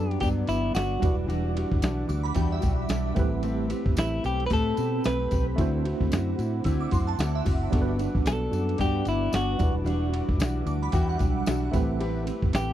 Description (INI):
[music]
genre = indie pop, bedroom pop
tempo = 112 BPM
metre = 4/4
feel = swing 60% on 16ths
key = G major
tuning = A4 = 440 Hz
[part]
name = direct-recorded clean electric guitar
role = melody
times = 0.0-12.7 s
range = E4 to B4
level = -30 LUFS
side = left 1 dB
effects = wide subtle chorus, tape echo
[part]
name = fingerpicked plugged-in steel-string acoustic guitar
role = accompaniment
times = 0.0-12.7 s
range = G2 to B4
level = -32 LUFS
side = left 2 dB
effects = lush chorus, vibrato effect
[part]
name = tine electric piano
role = accompaniment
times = 0.0-12.7 s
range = G3 to C5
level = -34 LUFS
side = right 5 dB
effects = overdrive, fast stereo tremolo, cassette tape
[part]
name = shimmering ambient pad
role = sustained chords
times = 0.0-12.7 s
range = G3 to D6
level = -36 LUFS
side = right 2 dB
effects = chorus, built-in reverb
[part]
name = vintage muted fingered electric bass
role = bass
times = 0.0-12.7 s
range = E1 to D3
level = -28 LUFS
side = equal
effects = none
[part]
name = dusty soul sampler-style drum kit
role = drums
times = 0.1-12.7 s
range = hi-hat, kick drum, ride cymbal, snare drum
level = -27 LUFS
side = equal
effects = none
[part]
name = tambourine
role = percussion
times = 0.2-12.7 s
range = none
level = -47 LUFS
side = left 9 dB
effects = none
[part]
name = shimmering bell with halo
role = second line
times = 2.1-3.1, 6.6-11.7 s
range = E5 to E6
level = -36 LUFS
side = right 4 dB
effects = ensemble chorus, wide subtle chorus, tape echo
[sound]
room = little or no reverb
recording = dry, close 1970s-style studio recording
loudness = -23 LUFS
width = side -12 dB against mid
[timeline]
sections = 0.0-12.7 A section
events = none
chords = 0.0 Gmaj7; 1.0 Em9; 3.2 Am9; 5.6 D9; 7.7 Gmaj7; 9.6 Em9; 11.7 Am9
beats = 0.21 0.75 | 1.29 1.82 2.36 2.90 | 3.43 3.97 4.51 5.04 | 5.58 6.12 6.65 7.19 | 7.72 8.26 8.80 9.33 | 9.87 10.40 10.94 11.48 | 12.01 12.55